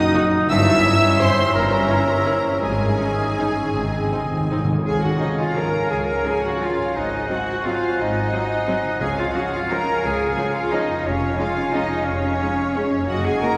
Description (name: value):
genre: classical, orchestral ballroom waltz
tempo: 152-189 BPM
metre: 3/4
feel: rubato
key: Db major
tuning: A4 = 441 Hz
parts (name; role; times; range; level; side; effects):
- warm studio violin section; melody; 0.0-13.6 s; Db5 to E6; -32 LUFS; equal; none
- bright clarinet; second line; 0.0-13.6 s; C4 to Eb5; -33 LUFS; equal; none
- clear studio violin section; second line; 0.0-13.6 s; Ab4 to Bb5; -32 LUFS; equal; none
- mellow oboe; second line; 0.0-13.6 s; Eb5 to Gb5; -31 LUFS; equal; none
- silver concert flute; second line; 0.0-13.6 s; Ab4 to Ab5; -31 LUFS; equal; none
- dark French horn section; sustained chords; 0.0-13.6 s; F3 to E4; -34 LUFS; equal; none
- mellow trombone section; sustained chords; 0.0-4.7 s; Eb3 to Eb4; -28 LUFS; equal; none
- concert harp; arpeggios; 0.0-13.6 s; F2 to Eb6; -32 LUFS; equal; none
- rich studio viola section; accompaniment; 0.2-13.5 s; F3 to Gb4; -32 LUFS; equal; none
- rich studio cello section; bass; 0.5-13.6 s; G2 to Bb4; -27 LUFS; equal; none
- rich studio double bass section; bass; 0.5-13.4 s; F1 to Db2; -30 LUFS; equal; none
- timpani; percussion; 3.8-4.8, 9.0-9.5 s; Ab2 to Db3; -30 LUFS; equal; none
room: wet cathedral reverb, RT60 5.0 s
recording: recorded in a church or concert hall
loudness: -21 LUFS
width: mono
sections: 0.0-4.9 A section; 4.9-13.6 B section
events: timpani fill 3.7-4.9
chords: 0.5 Gdim7; 2.6 Absus4; 3.7 Ab; 4.9 Db; 7.0 Ab7; 9.0 Db; 11.1 Db/F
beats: 0.15 | 0.49 0.84 1.20 | 1.54 1.89 2.25 | 2.62 2.99 3.38 | 3.75 4.12 4.51 | 4.87 5.21 5.57 | 5.91 6.25 6.62 | 6.96 7.29 7.65 | 7.99 8.33 8.68 | 9.01 9.35 9.71 | 10.04 10.37 10.72 | 11.06 11.39 11.75 | 12.08 12.41 12.77 | 13.10 13.43